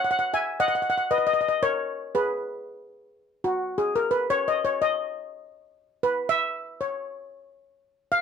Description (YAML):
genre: calypso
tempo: 116 BPM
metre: 4/4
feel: straight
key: unclear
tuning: A4 = 439 Hz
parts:
  - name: steel pan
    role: solo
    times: 0.0-8.2 s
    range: F#4 to G#5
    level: -23 LUFS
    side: left 1 dB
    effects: none
room: little or no reverb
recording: close, detailed microphones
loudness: -23 LUFS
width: side -6 dB against mid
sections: 0.0-3.4 A section; 3.4-8.2 B section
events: steel pan solo 3.4-8.2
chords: 0.3 Badd11 (rootless); 1.4 G#madd9; 3.4 N.C.